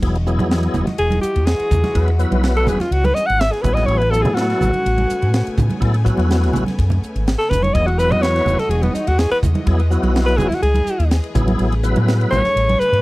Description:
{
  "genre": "electric jazz fusion",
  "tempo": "124 BPM",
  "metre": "4/4",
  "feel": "straight",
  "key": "E major",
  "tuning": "A4 = 440 Hz",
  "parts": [
    { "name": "tonewheel organ", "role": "accompaniment", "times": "0.0-12.4 s", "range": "F#3 to B4", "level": "-22 LUFS", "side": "left 1 dB", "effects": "slow rotary speaker, overdrive, chorus vibrato" },
    { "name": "rich studio string section", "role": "sustained chords", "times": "0.0-13.0 s", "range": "C#3 to G#5", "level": "-30 LUFS", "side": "left 1 dB", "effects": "none" },
    { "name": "fingered electric bass", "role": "bass", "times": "0.0-13.0 s", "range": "E1 to A2", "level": "-18 LUFS", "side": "equal", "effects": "none" },
    { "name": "crisp fusion drum kit", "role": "drums", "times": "0.0-13.0 s", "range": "crash cymbal, hi-hat, kick drum, ride cymbal, snare drum", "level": "-23 LUFS", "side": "equal", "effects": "none" },
    { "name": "congas", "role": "percussion", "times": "0.4-12.8 s", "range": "none", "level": "-24 LUFS", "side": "right 2 dB", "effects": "none" },
    { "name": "clear alto saxophone", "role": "melody", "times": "1.0-13.0 s", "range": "B3 to F#5", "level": "-19 LUFS", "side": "equal", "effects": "none" }
  ],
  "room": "little or no reverb",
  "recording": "dry, close 1970s-style studio recording",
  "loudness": "-15 LUFS",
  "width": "side -20 dB against mid",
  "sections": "0.0-13.0 A section",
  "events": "alto saxophone solo 0.0-13.0",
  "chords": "0.0 Emaj9; 3.6 Amaj9; 7.7 Emaj9; 11.4 Amaj9"
}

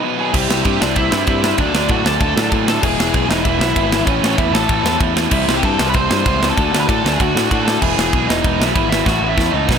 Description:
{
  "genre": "punk rock",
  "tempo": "192 BPM",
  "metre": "4/4",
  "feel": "straight",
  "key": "unclear",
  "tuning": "A4 = 439 Hz",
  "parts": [
    { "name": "smooth overdriven lead guitar", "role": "melody", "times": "0.0-9.8 s", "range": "C#4 to C6", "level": "-21 LUFS", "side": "equal", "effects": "none" },
    { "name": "distorted electric guitar", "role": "riff", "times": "0.0-9.8 s", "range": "E2 to D4", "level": "-20 LUFS", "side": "right 16 dB", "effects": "distortion" },
    { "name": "raw garage guitar", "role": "riff", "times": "0.0-9.8 s", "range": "A2 to F#4", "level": "-22 LUFS", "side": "left 18 dB", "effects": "overdrive" },
    { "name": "modern bright picked electric bass", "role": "bass", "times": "0.3-9.8 s", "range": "E1 to A2", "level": "-21 LUFS", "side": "equal", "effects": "none" },
    { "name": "tight metal drum kit", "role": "drums", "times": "0.3-9.8 s", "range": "crash cymbal, kick drum, ride cymbal, snare drum", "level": "-18 LUFS", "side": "equal", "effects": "none" }
  ],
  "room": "little or no reverb",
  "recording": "none",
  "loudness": "-13 LUFS",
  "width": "side -7 dB against mid",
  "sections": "0.3-9.8 A section",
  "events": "break 0.0-0.3; drum fill 9.1-9.8",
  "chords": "0.3 C; 1.6 D; 2.8 E; 4.1 A; 5.3 C; 6.6 D; 7.8 E; 9.1 A"
}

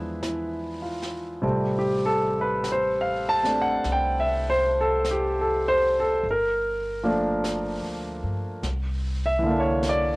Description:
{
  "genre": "jazz ballad",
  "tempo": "50 BPM",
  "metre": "4/4",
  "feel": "swing 68% on 8ths",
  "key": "unclear",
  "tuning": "A4 = 439 Hz",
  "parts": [
    { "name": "warm concert grand piano", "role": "accompaniment", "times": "0.0-10.2 s", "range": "C3 to A5", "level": "-23 LUFS", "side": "equal", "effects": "cassette tape" },
    { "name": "upright bass", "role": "bass", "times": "0.0-10.2 s", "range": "G1 to G2", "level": "-32 LUFS", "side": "equal", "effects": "none" },
    { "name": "jazz brush drum kit", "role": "drums", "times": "0.2-10.2 s", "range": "brushed snare drum, hi-hat, snare drum", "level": "-39 LUFS", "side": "equal", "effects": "cassette tape" }
  ],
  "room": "light reverb, small room ambience",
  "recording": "home recording on cassette",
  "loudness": "-22 LUFS",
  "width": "side -24 dB against mid",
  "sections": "0.0-10.2 A section",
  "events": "none",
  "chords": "0.0 E7b9; 1.4 Am7; 6.2 Gm7; 8.6 C9"
}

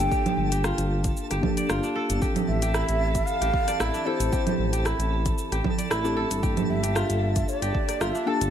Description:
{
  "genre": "organic downtempo",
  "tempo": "114 BPM",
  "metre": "4/4",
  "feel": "swing 53% on 16ths",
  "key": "G dorian",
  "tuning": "A4 = 441 Hz",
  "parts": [
    { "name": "breathy mellow ney", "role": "melody", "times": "0.0-8.5 s", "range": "C5 to A5", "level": "-29 LUFS", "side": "equal", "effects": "ping-pong delay" },
    { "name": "muted felt-like synth keys", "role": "accompaniment", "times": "0.0-8.5 s", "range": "E3 to A4", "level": "-31 LUFS", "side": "left 3 dB", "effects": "chorus, sidechain pumping, ping-pong delay" },
    { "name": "kora", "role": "arpeggios", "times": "0.0-8.5 s", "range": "D4 to D5", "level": "-31 LUFS", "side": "right 2 dB", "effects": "ping-pong delay" },
    { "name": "smooth synth bass", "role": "bass", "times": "0.0-8.5 s", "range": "G1 to A1", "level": "-27 LUFS", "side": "equal", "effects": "tube saturation" },
    { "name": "twinkling granular texture", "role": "texture", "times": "0.0-8.5 s", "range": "A4", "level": "-38 LUFS", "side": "right 2 dB", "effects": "built-in reverb" },
    { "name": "electronic kick drum", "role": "drums", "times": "0.1-7.9 s", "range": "none", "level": "-28 LUFS", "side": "equal", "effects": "overdrive" },
    { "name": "organic electronic drum kit", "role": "drums", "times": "0.1-8.5 s", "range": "congas, hi-hat, rim click, shaker", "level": "-30 LUFS", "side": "right 4 dB", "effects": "none" }
  ],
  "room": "light reverb, digital ambience",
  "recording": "none",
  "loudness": "-22 LUFS",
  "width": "side -9 dB against mid",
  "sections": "0.0-8.5 A section",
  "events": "none",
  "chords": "0.0 Gmadd9; 2.2 Am7; 6.4 Gmadd9"
}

